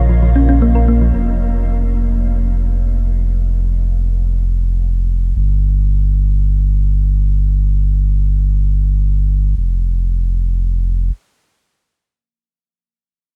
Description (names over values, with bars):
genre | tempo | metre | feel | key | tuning
IDM | free time | none | none | unclear | A4 = 440 Hz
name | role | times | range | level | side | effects
glassy FM pad | sustained chords | 0.0-1.1 s | Db3 to Bb4 | -32 LUFS | equal | ensemble chorus, built-in reverb
thumb-piano-like synth pluck | arpeggios | 0.0-1.1 s | F3 to Bb4 | -23 LUFS | equal | chorus, analog delay
warm sub bass | bass | 0.0-11.1 s | F1 to Bb1 | -16 LUFS | equal | none
room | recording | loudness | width
light reverb | none | -16 LUFS | mono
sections
0.0-1.1 A section; 1.1-9.6 B section; 9.6-13.4 C section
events
filter sweep on sub bass 1.1-9.6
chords
0.0 Bbm; 1.1 N.C.